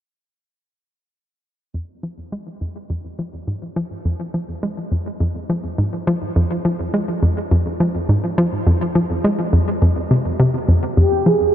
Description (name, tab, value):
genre	ambient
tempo	104 BPM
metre	4/4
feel	straight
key	F minor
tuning	A4 = 440 Hz
part	hollow square pluck	riff	1.7-11.5 s	F2 to Ab3	-17 LUFS	equal	chorus, tape echo
part	expressive synth lead	melody	11.0-11.5 s	G4 to Ab4	-15 LUFS	right 1 dB	lush chorus
room	moderate huge ambient reverb, RT60 8.9 s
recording	dark, warm production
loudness	-17 LUFS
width	side -10 dB against mid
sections	1.7-11.0 A section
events	fade-in on synth arpeggio sound 1.7-11.0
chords	1.7 Fm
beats	| 1.74 2.32 2.90 3.48 | 4.05 4.63 5.21 5.78 | 6.36 6.94 7.51 8.09 | 8.67 9.24 9.82 10.40 | 10.97